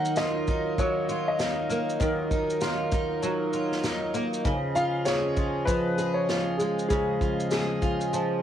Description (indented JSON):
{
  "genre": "acoustic pop",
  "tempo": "98 BPM",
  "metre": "4/4",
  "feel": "swing 60% on 16ths",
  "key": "Eb minor",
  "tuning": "A4 = 440 Hz",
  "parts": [
    { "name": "dark upright piano", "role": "melody", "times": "0.0-8.4 s", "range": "Ab4 to Gb5", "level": "-30 LUFS", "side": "left 1 dB", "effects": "cassette tape, plate reverb" },
    { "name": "picked steel-string acoustic guitar", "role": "accompaniment", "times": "0.0-8.4 s", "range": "Db3 to Ab4", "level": "-27 LUFS", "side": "right 1 dB", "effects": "double-tracked left and right, cassette tape" },
    { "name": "pedal harmonium", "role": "sustained chords", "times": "0.0-8.4 s", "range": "F3 to Eb5", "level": "-34 LUFS", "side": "equal", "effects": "cassette tape" },
    { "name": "unplugged drum kit", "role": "drums", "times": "0.1-8.3 s", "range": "kick drum, shaker, snare drum", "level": "-31 LUFS", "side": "equal", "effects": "cassette tape" }
  ],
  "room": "light reverb",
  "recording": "home recording on cassette",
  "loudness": "-24 LUFS",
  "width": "side -10 dB against mid",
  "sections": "0.0-8.4 A section",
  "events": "none",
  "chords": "0.0 Ebmadd9; 4.5 Db",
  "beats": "0.17 0.79 1.40 | 2.01 2.62 3.23 3.84 | 4.46 5.07 5.68 6.29 | 6.90 7.52 8.13"
}